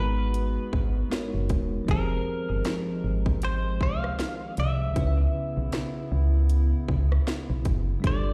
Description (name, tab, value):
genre	contemporary R&B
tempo	78 BPM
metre	4/4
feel	swing 58% on 16ths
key	unclear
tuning	A4 = 440 Hz
part	direct-recorded clean electric guitar	melody	0.0-8.3 s	Bb4 to F5	-37 LUFS	equal	tape echo
part	bell-like tine electric piano	accompaniment	0.0-8.3 s	Db3 to Fb5	-36 LUFS	equal	none
part	hollow soft pad	sustained chords	0.0-8.3 s	Db3 to G4	-39 LUFS	equal	chorus
part	solid FM bass	bass	0.0-8.3 s	E1 to Db2	-27 LUFS	equal	none
part	trap drum kit	drums	0.3-8.2 s	hi-hat, kick drum, rim click, snare drum	-31 LUFS	equal	overdrive
room	little or no reverb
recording	played on a big sound system in a bare room, stone room reverb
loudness	-26 LUFS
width	mono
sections	0.0-8.3 A section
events	none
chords	0.0 Abm7; 1.9 Fm7; 5.0 Dbm7